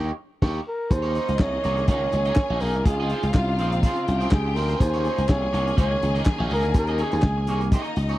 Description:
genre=disco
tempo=123 BPM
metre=4/4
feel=straight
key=unclear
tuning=A4 = 440 Hz
part: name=electric guitar at the edge of break-up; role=accompaniment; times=0.0-8.2 s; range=Bb3 to Eb5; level=-32 LUFS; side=right 4 dB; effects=phaser
part: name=glassy slap bass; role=bass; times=0.0-8.1 s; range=Bb1 to Eb2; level=-24 LUFS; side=equal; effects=none
part: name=warm soul drum kit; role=drums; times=0.4-8.2 s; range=crash cymbal, handclaps, hi-hat, kick drum, snare drum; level=-20 LUFS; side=equal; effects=none
part: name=breathy flugelhorn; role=melody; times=0.7-7.7 s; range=F4 to Db5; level=-26 LUFS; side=right 1 dB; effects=none
part: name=clear studio string section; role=second line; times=0.9-8.2 s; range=Eb4 to Ab5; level=-33 LUFS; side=left 3 dB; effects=none
part: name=clear symphonic string section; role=sustained chords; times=0.9-8.2 s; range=Db3 to Ab4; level=-33 LUFS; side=equal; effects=none
room=little or no reverb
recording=dry, close 1970s-style studio recording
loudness=-20 LUFS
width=side -16 dB against mid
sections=0.9-8.2 A section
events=band accent 0.0-0.9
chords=0.0 Eb7; 0.9 Eb7sus4; 2.9 Dbmaj7

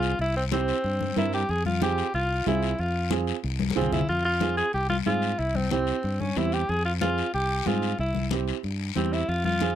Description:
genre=latin, cumbia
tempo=185 BPM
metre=4/4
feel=straight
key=F harmonic minor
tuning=A4 = 440 Hz
part: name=clear alto saxophone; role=melody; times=0.0-9.8 s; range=C4 to Ab4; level=-27 LUFS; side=equal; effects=none
part: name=dark upright piano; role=accompaniment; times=0.0-9.8 s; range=C4 to Bb4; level=-30 LUFS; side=right 13 dB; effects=none
part: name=fingered electric bass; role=bass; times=0.0-9.8 s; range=C2 to Ab2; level=-29 LUFS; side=equal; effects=none
part: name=guiro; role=percussion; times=0.0-9.8 s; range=none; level=-38 LUFS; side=left 19 dB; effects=none
part: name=congas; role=percussion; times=0.2-9.8 s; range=none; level=-31 LUFS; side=left 6 dB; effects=none
room=light reverb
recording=dry, close 1970s-style studio recording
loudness=-24 LUFS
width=side -10 dB against mid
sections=0.0-4.1 A section; 4.1-9.8 B section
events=drum fill 3.6-4.1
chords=0.2 C7; 1.5 Fm; 5.4 C; 6.7 Fm; 8.0 C

